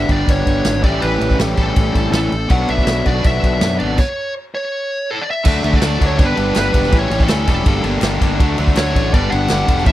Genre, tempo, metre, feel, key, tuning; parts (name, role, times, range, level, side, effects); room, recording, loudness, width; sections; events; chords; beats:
indie rock; 163 BPM; 4/4; straight; A4 = 439 Hz
smooth overdriven lead guitar; melody; 0.0-9.9 s; A4 to F#5; -21 LUFS; equal; slapback echo
tonewheel organ; sustained chords; 0.0-4.0 s; A4 to B5; -33 LUFS; equal
crunchy overdriven guitar; riff; 0.0-9.9 s; G2 to E4; -22 LUFS; right 6 dB; lush chorus, slapback echo
overdriven electric guitar; riff; 0.0-9.9 s; G2 to A4; -21 LUFS; left 6 dB
fuzz fingered electric bass; bass; 0.0-9.9 s; E1 to F#2; -20 LUFS; equal; overdrive
vintage drum kit; drums; 0.1-9.9 s; crash cymbal, kick drum, ride cymbal, snare drum; -17 LUFS; equal
group handclap; percussion; 5.8-9.6 s; -32 LUFS; left 10 dB
little or no reverb; dry, close 1970s-style studio recording; -14 LUFS; side -14 dB against mid
0.0-5.5 A section; 5.5-9.9 B section
stop 4.0-5.5
0.0 Gmaj7; 0.8 A5; 2.5 Bm7; 4.0 N.C.; 5.5 D; 6.2 G; 6.9 A7; 7.7 Gm; 8.4 D; 9.1 Gmaj7
0.28 0.65 | 1.02 1.39 1.76 2.13 | 2.50 2.87 3.24 3.61 | 3.98 4.35 4.72 5.09 | 5.46 5.82 6.19 6.56 | 6.92 7.29 7.66 8.02 | 8.39 8.76 9.12 9.49 | 9.86